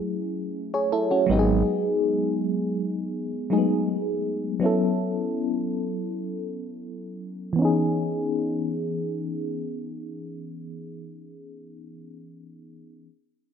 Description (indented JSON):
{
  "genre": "contemporary R&B",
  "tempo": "81 BPM",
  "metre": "4/4",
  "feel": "straight",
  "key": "C# minor",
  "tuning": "A4 = 440 Hz",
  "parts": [
    { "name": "FM electric piano with auto-pan", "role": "accompaniment", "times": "0.0-13.1 s", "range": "E3 to C#5", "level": "-24 LUFS", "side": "equal", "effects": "phaser, low-pass filter" },
    { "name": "smooth gliding synth bass", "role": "bass", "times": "1.3-1.6 s", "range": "G#1", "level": "-25 LUFS", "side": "equal", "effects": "none" }
  ],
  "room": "moderate plate reverb, RT60 2.3 s",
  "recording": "none",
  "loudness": "-23 LUFS",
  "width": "side -7 dB against mid",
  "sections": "0.0-7.6 A section; 7.6-10.5 B section",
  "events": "filter sweep on FM electric piano 0.0-7.6",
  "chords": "0.0 F#m7; 1.3 G#m7; 4.6 A69; 7.6 C#m7"
}